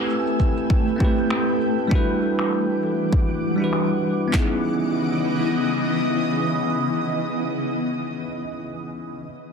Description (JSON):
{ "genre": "sunset chillout", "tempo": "99 BPM", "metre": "4/4", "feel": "swing 57% on 16ths", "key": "C# minor", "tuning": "A4 = 442 Hz", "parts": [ { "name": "bell-like tine electric piano", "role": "accompaniment", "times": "0.0-9.3 s", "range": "G3 to B4", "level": "-24 LUFS", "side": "equal", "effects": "auto-pan, tape echo" }, { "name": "shimmering ambient pad", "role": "sustained chords", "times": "0.0-7.5 s", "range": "C#3 to D6", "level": "-24 LUFS", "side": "equal", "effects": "chorus, built-in reverb, phaser" }, { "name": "electronic shaker and finger snaps", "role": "drums", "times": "0.1-4.3 s", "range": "none", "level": "-31 LUFS", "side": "equal", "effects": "overdrive, low-pass filter on perc, soft clipping on snare, low-pass filter on snare, low-pass filter on room" }, { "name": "deep house drum kit", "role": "drums", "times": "0.4-4.5 s", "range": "handclaps, kick drum, snare drum", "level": "-20 LUFS", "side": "equal", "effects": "overdrive" } ], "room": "moderate plate reverb, RT60 2.9 s", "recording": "dense, heavily limited modern master", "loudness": "-20 LUFS", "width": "side -6 dB against mid", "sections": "0.0-4.3 A section; 4.3-6.8 B section", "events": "filter sweep on drum 0.0-4.3", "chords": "0.0 Am9; 1.9 Em9; 4.3 C#m9" }